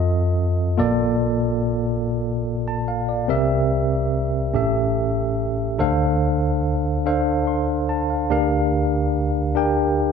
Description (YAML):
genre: gospel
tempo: 48 BPM (dotted quarters)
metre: 6/8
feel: straight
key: unclear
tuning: A4 = 445 Hz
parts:
  - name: tine electric piano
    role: solo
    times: 0.0-10.1 s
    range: A1 to C6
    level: -19 LUFS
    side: equal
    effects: medium stereo tremolo
room: wet large studio reverb, RT60 1.3 s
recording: none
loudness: -19 LUFS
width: side -6 dB against mid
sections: 0.0-10.1 A section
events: none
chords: 0.0 F7; 0.8 Bbmaj7; 3.3 C7; 4.5 A7; 5.8 Dm7; 8.3 Gm7/D